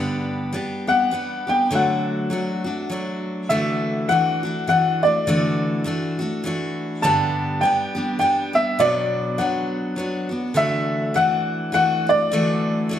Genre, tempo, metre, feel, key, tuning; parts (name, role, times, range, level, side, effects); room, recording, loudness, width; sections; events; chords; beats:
acoustic folk duo or small band; 102 BPM; 3/4; swing 58% on 8ths; D major; A4 = 440 Hz
picked steel-string acoustic guitar; accompaniment; 0.0-13.0 s; G2 to G4; -23 LUFS; equal
clear upright piano; melody; 0.9-12.9 s; D5 to A5; -20 LUFS; left 1 dB
moderate recital hall reverb, RT60 1.3 s; close, detailed microphones, lossy compression artefacts; -19 LUFS; side -10 dB against mid
0.0-3.5 A section; 3.5-13.0 B section
0.0 G; 1.7 D; 3.5 Dadd9; 7.0 G; 8.8 Bm; 10.6 Dadd9
0.55 1.14 | 1.73 2.32 2.91 | 3.50 4.09 4.68 | 5.27 5.86 6.45 | 7.04 7.63 8.22 | 8.80 9.39 9.98 | 10.56 11.15 11.74 | 12.32 12.91